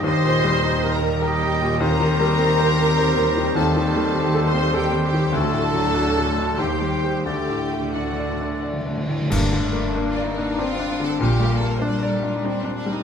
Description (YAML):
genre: classical, romantic movement for piano and orchestra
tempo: 84-105 BPM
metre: 3/4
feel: rubato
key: G minor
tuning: A4 = 440 Hz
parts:
  - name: clear grand piano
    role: melody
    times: 0.0-13.0 s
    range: D2 to D5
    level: -23 LUFS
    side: left 3 dB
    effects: none
  - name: warm symphonic violin section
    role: melody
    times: 0.0-12.9 s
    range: D5 to C6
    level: -28 LUFS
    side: left 3 dB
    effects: none
  - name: clear oboe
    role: second line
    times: 0.0-8.9 s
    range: A4 to Eb5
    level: -29 LUFS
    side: right 2 dB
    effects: none
  - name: mellow clarinet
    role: second line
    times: 0.0-8.9 s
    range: F#4 to A4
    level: -31 LUFS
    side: left 2 dB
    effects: none
  - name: rich studio viola section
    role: accompaniment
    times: 0.0-12.9 s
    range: Bb3 to C5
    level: -27 LUFS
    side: right 2 dB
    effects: none
  - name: mellow French horn section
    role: sustained chords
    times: 0.0-9.0 s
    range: F#3 to Eb4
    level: -30 LUFS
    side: left 5 dB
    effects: none
  - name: rich studio violin section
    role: second line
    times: 0.1-13.0 s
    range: C4 to D5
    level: -29 LUFS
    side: left 1 dB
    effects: none
  - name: rich studio double bass section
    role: bass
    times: 0.1-11.7 s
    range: Bb1 to G2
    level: -27 LUFS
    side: right 5 dB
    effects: none
  - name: warm studio cello section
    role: bass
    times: 0.1-13.0 s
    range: D3 to C4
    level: -28 LUFS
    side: right 2 dB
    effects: none
  - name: cymbal swell, clash cymbals and concert bass drum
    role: percussion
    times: 5.3-10.5 s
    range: none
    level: -31 LUFS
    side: right 1 dB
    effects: none
  - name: timpani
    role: percussion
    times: 5.3-9.3 s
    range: D3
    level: -30 LUFS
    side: right 1 dB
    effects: none
room: moderate scoring stage reverb, RT60 1.7 s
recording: none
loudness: -18 LUFS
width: side -7 dB against mid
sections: 0.0-9.3 A section; 9.3-13.0 B section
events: timpani fill 7.3-9.3; band accent 9.3-10.0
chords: 0.1 Eb; 3.6 Am7b5/Eb; 5.3 D; 6.6 Cm/Eb; 7.3 D; 9.3 Gm; 11.2 Gm/Bb